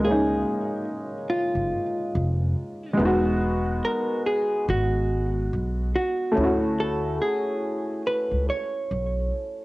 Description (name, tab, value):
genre	hip hop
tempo	71 BPM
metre	4/4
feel	swing 59% on 16ths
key	unclear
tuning	A4 = 439 Hz
part	hollow-body jazz guitar	melody	0.0-9.6 s	E#4 to C#5	-26 LUFS	equal	low-pass filter, plate reverb
part	warm upright piano	accompaniment	0.0-9.6 s	G#3 to F#4	-26 LUFS	equal	cassette tape, low-pass filter, plate reverb
part	upright bass	bass	0.0-9.3 s	E1 to D2	-26 LUFS	equal	none
room	moderate small room reverb, RT60 0.6 s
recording	home recording on cassette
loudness	-22 LUFS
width	side -20 dB against mid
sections	0.0-9.6 A section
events	none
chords	0.0 F#maj9 (rootless); 3.0 Emaj9; 6.4 Dmaj9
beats	| 0.03 0.87 1.72 2.56 | 3.41 4.25 5.10 5.94 | 6.79 7.63 8.48 9.32